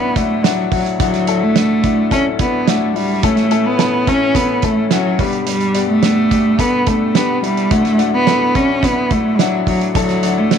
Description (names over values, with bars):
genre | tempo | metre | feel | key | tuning
piano-driven pop | 107 BPM | 4/4 | straight | D major | A4 = 440 Hz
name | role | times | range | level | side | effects
warm cello | melody | 0.0-10.6 s | F#3 to C#4 | -15 LUFS | right 2 dB | none
clear baby grand piano | accompaniment | 0.0-10.6 s | G1 to A4 | -19 LUFS | left 14 dB | none
bright tonewheel organ | sustained chords | 0.0-10.6 s | A2 to C#5 | -30 LUFS | equal | chorus vibrato, slow rotary speaker
loose indie drum kit | drums | 0.2-10.6 s | hi-hat, kick drum, snare drum | -18 LUFS | right 5 dB | none
room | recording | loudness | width
moderate spring reverb, RT60 1.7 s, studio reverb | 1960s-style stereo | -13 LUFS | side -7 dB against mid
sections
0.0-10.6 A section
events
none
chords
0.0 Dadd9; 3.2 A; 5.2 G; 7.7 Dadd9